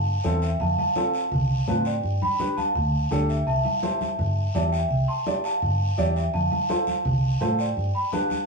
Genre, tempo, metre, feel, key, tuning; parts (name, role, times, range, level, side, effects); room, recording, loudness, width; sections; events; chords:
latin, cumbia; 168 BPM; 4/4; straight; C major; A4 = 443 Hz
large celesta; melody; 0.0-8.5 s; D5 to C6; -26 LUFS; equal
vintage muted fingered electric bass; bass; 0.0-7.9 s; C2 to A2; -24 LUFS; right 1 dB
dark upright piano; accompaniment; 0.2-8.4 s; C4 to D5; -29 LUFS; right 1 dB
congas; percussion; 0.2-8.5 s; -32 LUFS; equal
guiro; percussion; 0.2-8.5 s; -43 LUFS; left 2 dB
wet studio reverb, RT60 0.9 s; band playing live in one room, small room ambience; -22 LUFS; side -4 dB against mid
0.0-8.5 A section
0.0 C; 0.6 F; 2.0 G7; 3.5 C; 6.3 F; 7.8 G7